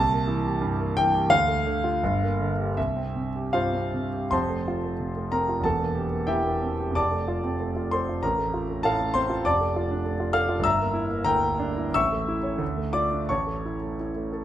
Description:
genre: classical, romantic character piece for solo piano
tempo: 71-101 BPM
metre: 2/4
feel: rubato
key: F major, D minor from 9.5 s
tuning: A4 = 440 Hz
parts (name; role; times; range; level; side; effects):
- warm concert grand piano; solo; 0.0-14.4 s; E1 to F6; -23 LUFS; equal; none
room: moderate recital hall reverb, RT60 1.5 s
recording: close, detailed microphones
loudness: -23 LUFS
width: side -12 dB against mid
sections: 0.0-4.3 A section; 4.3-14.4 B section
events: none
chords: 0.0 C7; 1.3 Dm; 2.0 Gm7; 2.8 C; 4.3 F; 5.6 C7/E; 7.0 F; 8.2 F/A; 9.5 Dm/F; 10.7 Em7b5/G; 11.9 A; 12.6 Dm; 13.3 A

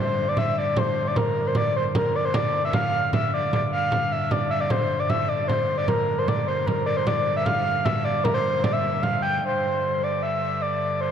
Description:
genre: medieval dance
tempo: 152 BPM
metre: 3/4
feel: straight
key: G dorian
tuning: A4 = 442 Hz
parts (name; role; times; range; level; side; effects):
- breathy flute-like synth lead; melody; 0.0-11.1 s; Bb4 to G5; -23 LUFS; equal; chorus
- pipe organ, foundations; drone; 0.0-11.1 s; G2 to D3; -30 LUFS; equal; none
- frame drum; percussion; 0.4-9.3 s; none; -27 LUFS; right 2 dB; none
room: wet church reverb, RT60 3.5 s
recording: none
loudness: -21 LUFS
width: side -8 dB against mid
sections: 0.0-9.4 A section; 9.4-11.1 A section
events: none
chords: none

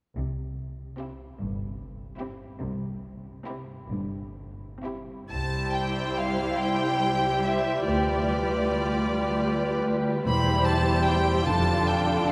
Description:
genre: classical, slow romantic movement for string orchestra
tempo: 42-52 BPM (dotted quarters)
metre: 6/8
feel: rubato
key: C major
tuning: A4 = 439 Hz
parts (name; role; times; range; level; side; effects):
- rich chamber cello section; bass; 0.2-12.3 s; C2 to C3; -33 LUFS; equal; none
- rich studio double bass section; bass; 0.2-12.3 s; E1 to D2; -36 LUFS; equal; none
- rich chamber violin section; melody; 1.0-12.3 s; G4 to B5; -32 LUFS; equal; none
- dark studio violin section; second line; 1.0-12.3 s; E4 to C5; -32 LUFS; equal; none
- dark studio viola section; accompaniment; 1.0-12.3 s; D3 to F4; -33 LUFS; equal; none
room: wet cathedral reverb, RT60 6.1 s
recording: recorded in a church or concert hall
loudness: -26 LUFS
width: mono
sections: 0.2-5.3 A section; 5.3-12.3 B section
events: none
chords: 0.2 C; 7.9 G7/D; 10.3 C/E; 11.5 Dm/F

